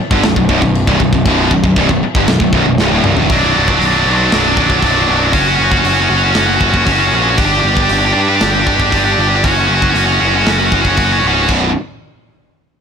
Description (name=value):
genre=heavy metal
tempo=117 BPM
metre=4/4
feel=straight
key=B minor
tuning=A4 = 440 Hz
part: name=fuzz picked electric bass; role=bass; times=0.0-11.7 s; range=B0 to G2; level=-17 LUFS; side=equal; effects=overdrive, transformer saturation
part: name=high-gain distorted guitar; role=riff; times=0.1-11.7 s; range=B1 to G4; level=-12 LUFS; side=equal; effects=distortion
part: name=tight metal drum kit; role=drums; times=0.1-11.6 s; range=crash cymbal, hi-hat, kick drum, snare drum, toms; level=-18 LUFS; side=equal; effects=none
room=light reverb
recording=blown-out, overdriven recording, overdrive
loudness=-10 LUFS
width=side -7 dB against mid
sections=0.0-3.3 A section; 3.3-11.5 B section; 11.5-12.8 C section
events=drum fill 2.8-3.3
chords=0.0 Bm; 5.3 F#5; 7.4 G5; 9.4 F#5; 11.5 B5